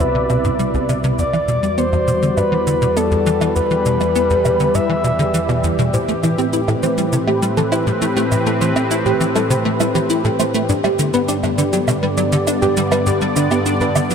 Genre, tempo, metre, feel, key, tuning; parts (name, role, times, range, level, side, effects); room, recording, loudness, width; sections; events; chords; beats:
ambient, sequencer-driven space music; 101 BPM; 4/4; straight; E minor; A4 = 440 Hz
breathy flute-like synth lead; melody; 0.0-5.6 s; A4 to E5; -20 LUFS; left 1 dB; chorus, ping-pong delay
sweeping resonant pad; sustained chords; 0.0-14.1 s; C2 to D5; -19 LUFS; equal; chorus
tight sequencer bass; riff; 0.0-14.1 s; C2 to E4; -19 LUFS; equal; ensemble chorus, ping-pong delay
shaker and woodblock; percussion; 0.0-14.1 s; -27 LUFS; right 5 dB; ping-pong delay
soft round pluck; arpeggios; 5.9-14.1 s; D4 to D5; -22 LUFS; right 3 dB; chorus, auto-pan, ping-pong delay
moderate huge ambient reverb, RT60 8.2 s; -15 LUFS; side -7 dB against mid
0.0-14.1 A section
fade-in on drum 0.0-14.1
0.0 Cmaj7; 1.2 Em7; 5.9 Am7; 10.7 G
0.00 0.59 | 1.19 1.78 2.38 2.97 | 3.56 4.16 4.75 5.34 | 5.94 6.53 7.13 7.72 | 8.32 8.91 9.50 10.10 | 10.69 11.29 11.88 12.47 | 13.07 13.66